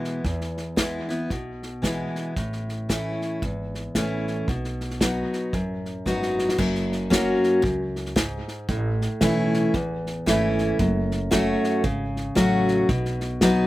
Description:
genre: honky-tonk and classic country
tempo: 114 BPM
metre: 4/4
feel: swing 60% on 8ths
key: unclear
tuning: A4 = 439 Hz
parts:
  - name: picked steel-string acoustic guitar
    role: accompaniment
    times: 0.0-13.7 s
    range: E2 to F#4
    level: -23 LUFS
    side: equal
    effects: slapback echo
  - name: unplugged drum kit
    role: drums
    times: 0.0-13.6 s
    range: crash cymbal, hi-hat, kick drum, snare drum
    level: -27 LUFS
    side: equal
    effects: none
  - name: upright bass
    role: bass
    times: 0.2-13.6 s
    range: F#1 to E2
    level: -30 LUFS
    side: right 1 dB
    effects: none
room: little or no reverb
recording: recorded outdoors, with no room sound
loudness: -22 LUFS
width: side -16 dB against mid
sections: 0.0-6.6 A section; 6.6-13.7 B section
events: drum fill 6.1-6.6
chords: 0.0 E; 2.4 A; 4.5 B; 6.6 F#; 8.7 A; 10.8 F#m; 12.9 B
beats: | 0.25 0.78 1.30 1.83 | 2.36 2.89 3.42 3.95 | 4.47 5.00 5.53 6.06 | 6.58 7.11 7.64 8.16 | 8.69 9.21 9.74 10.27 | 10.79 11.32 11.84 12.37 | 12.89 13.42

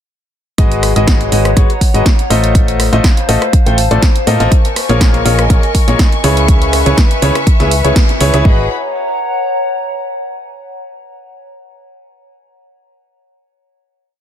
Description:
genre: piano house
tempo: 122 BPM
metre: 4/4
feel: swing 53% on 16ths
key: G# minor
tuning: A4 = 439 Hz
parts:
  - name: clear grand piano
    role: riff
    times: 0.6-8.6 s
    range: C#3 to G5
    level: -16 LUFS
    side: left 2 dB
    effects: sidechain pumping, ping-pong delay
  - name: solid FM bass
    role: bass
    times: 0.6-8.7 s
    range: G#1 to A2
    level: -14 LUFS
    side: equal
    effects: sidechain pumping
  - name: electronic kick drum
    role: drums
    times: 0.6-8.6 s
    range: none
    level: -10 LUFS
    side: equal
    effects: none
  - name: punchy analog drum machine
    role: drums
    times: 0.6-8.4 s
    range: hi-hat, rim click, snare drum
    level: -19 LUFS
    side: right 1 dB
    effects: none
  - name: warbly tape-like pad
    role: texture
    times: 1.0-10.4 s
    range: A#4 to A#5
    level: -20 LUFS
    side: left 1 dB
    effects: chorus, built-in reverb, sidechain pumping
  - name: rich studio string section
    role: sustained chords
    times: 4.5-8.7 s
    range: G#4 to C#6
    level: -21 LUFS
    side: left 4 dB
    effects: sidechain pumping
room: digital ambience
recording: dense, heavily limited modern master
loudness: -9 LUFS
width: side -10 dB against mid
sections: 0.6-8.5 drop; 8.5-10.4 final chord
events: drop 0.6-8.5; band accent 8.0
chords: 0.6 G#m7; 2.5 F7/A; 4.5 A#m7; 6.2 C#m7; 8.5 G#m7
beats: | 0.58 1.07 1.57 2.06 | 2.55 3.04 3.53 4.03 | 4.52 5.01 5.50 5.99 | 6.49 6.98 7.47 7.96 | 8.45 8.94 9.44 9.93

